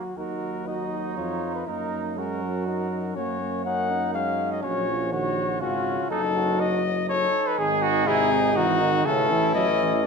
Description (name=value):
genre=classical, brass quintet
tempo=121 BPM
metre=3/4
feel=straight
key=Eb minor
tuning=A4 = 438 Hz
part: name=dark cornet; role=melody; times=0.0-10.1 s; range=Gb4 to Gb5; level=-26 LUFS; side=left 6 dB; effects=none
part: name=mellow trumpet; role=second line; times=0.0-10.1 s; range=C#4 to A4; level=-30 LUFS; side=right 9 dB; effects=none
part: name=mellow euphonium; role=accompaniment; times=0.0-9.9 s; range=B#2 to Bb3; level=-30 LUFS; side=right 5 dB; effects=none
part: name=warm tuba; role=bass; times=0.0-10.1 s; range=F#1 to Gb2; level=-31 LUFS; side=right 4 dB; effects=none
part: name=clear French horn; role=accompaniment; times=0.2-10.1 s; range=Db4 to Gb4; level=-31 LUFS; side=left 3 dB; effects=none
room=moderate scoring stage reverb, RT60 1.8 s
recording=minimal, uncompressed stereo recording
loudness=-22 LUFS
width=side -5 dB against mid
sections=0.2-10.1 A section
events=none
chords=0.2 Ebm; 1.7 Ebm/Gb; 4.6 Gb/Bb; 6.1 D#dim/F#; 7.6 G#7; 9.1 A